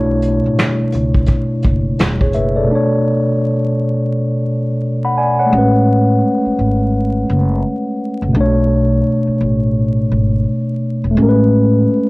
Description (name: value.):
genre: lo-fi hip hop.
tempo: 85 BPM.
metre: 4/4.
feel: swing 62% on 16ths.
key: B dorian.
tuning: A4 = 440 Hz.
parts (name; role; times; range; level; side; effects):
mellow tine electric piano; accompaniment; 0.0-12.1 s; B2 to B5; -14 LUFS; equal; medium stereo tremolo, cassette tape.
upright bass; bass; 0.0-11.8 s; E1 to C#2; -17 LUFS; equal; none.
vintage brush drum kit; drums; 0.2-2.5 s; finger snaps, hi-hat, kick drum, snare drum; -16 LUFS; equal; none.
room: moderate studio reverb, RT60 0.6 s.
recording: worn, warbling old tape, cassette tape, vinyl crackle, warbly pitch drift.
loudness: -13 LUFS.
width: side -23 dB against mid.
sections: 0.0-2.7 A section; 2.7-12.1 B section.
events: none.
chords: 0.0 Bm11; 2.7 Bm9; 5.5 Amaj9; 8.3 Bm9; 11.2 Amaj9.